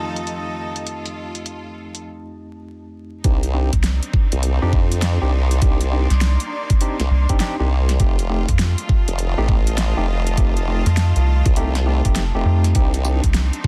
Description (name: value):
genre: glitch hop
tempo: 101 BPM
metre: 4/4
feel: swing 64% on 16ths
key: C dorian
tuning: A4 = 440 Hz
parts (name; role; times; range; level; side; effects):
- bright studio string section; sustained chords; 0.0-13.7 s; Eb3 to A4; -35 LUFS; equal; sidechain pumping
- tine electric piano; stabs; 0.0-13.2 s; F2 to G4; -30 LUFS; equal; sidechain pumping, low-pass filter, tape echo
- airy breathy pad; texture; 0.0-13.7 s; Eb3 to C6; -34 LUFS; equal; chorus, sidechain pumping
- dubstep drum kit; drums; 0.2-13.6 s; hi-hat, snare drum, tambourine; -29 LUFS; equal; overdrive, low-pass filter on hats, low-pass filter on snare, low-pass filter on perc
- formant-sweep wobble bass; bass; 3.2-13.2 s; F1 to F2; -21 LUFS; equal; chorus
- electronic kick drum; drums; 3.2-13.7 s; none; -20 LUFS; equal; overdrive
- rubbery square bass; bass; 3.7-13.5 s; F1 to F2; -19 LUFS; equal; none
room: little or no reverb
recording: dense, heavily limited modern master, vinyl crackle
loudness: -19 LUFS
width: mono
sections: 0.0-3.2 A section; 3.2-13.7 B section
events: break 2.1-3.2; drop 3.2-13.7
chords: 0.0 F7; 3.2 Cmadd9; 8.0 F7; 12.8 Cmadd9